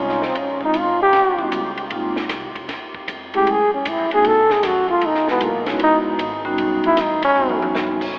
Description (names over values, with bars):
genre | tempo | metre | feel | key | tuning
jazz, small-group swing and bop | 154 BPM | 4/4 | swing 66% on 8ths | unclear | A4 = 440 Hz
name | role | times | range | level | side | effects
breathy trombone | melody | 0.0-7.6 s | Bb3 to A4 | -17 LUFS | equal | none
vibraphone with medium mallets | accompaniment | 0.0-8.0 s | G3 to Ab4 | -24 LUFS | equal | none
upright bass | bass | 0.0-8.1 s | F1 to B2 | -36 LUFS | equal | none
compact cocktail drum kit | drums | 0.1-8.1 s | crash cymbal, hi-hat, kick drum, ride cymbal, snare drum, toms | -28 LUFS | equal | none
room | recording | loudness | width
wet cathedral reverb, RT60 6.5 s | in a vast, echoing space, telephone sound | -16 LUFS | side -31 dB against mid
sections
0.0-8.1 A section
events
trombone solo 0.0-8.1; drum fill 7.4-7.8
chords
0.0 Bbm11; 1.1 A13; 1.9 Ab69; 3.5 Gbm9; 4.2 B5; 5.0 Emaj9; 6.6 Eb7alt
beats
| 0.35 0.74 1.13 1.52 | 1.91 2.30 2.69 3.08 | 3.47 3.85 4.25 4.63 | 5.03 5.41 5.80 6.19 | 6.58 6.97 7.36 7.75